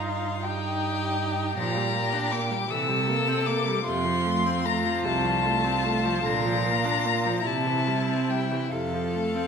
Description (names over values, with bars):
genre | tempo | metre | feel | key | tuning
classical, slow romantic movement for string quartet | 46-54 BPM (dotted quarters) | 6/8 | rubato | F major | A4 = 440 Hz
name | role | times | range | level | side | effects
rich violin | melody | 0.0-9.5 s | F5 to E6 | -28 LUFS | left 6 dB | none
rich violin | second line | 0.0-9.5 s | E4 to A4 | -30 LUFS | left 3 dB | none
clear viola | accompaniment | 0.0-9.5 s | C3 to Eb4 | -30 LUFS | right 2 dB | none
rich cello | bass | 0.0-9.5 s | C2 to C3 | -29 LUFS | right 5 dB | none
room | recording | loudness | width
wet recital hall reverb, RT60 1.3 s | minimal, uncompressed stereo recording | -23 LUFS | side -6 dB against mid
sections
0.0-9.5 A section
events
none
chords
0.0 Eb/G; 1.6 Gm7/Bb; 2.7 C6; 3.9 F; 6.2 Bb; 7.4 C; 8.7 F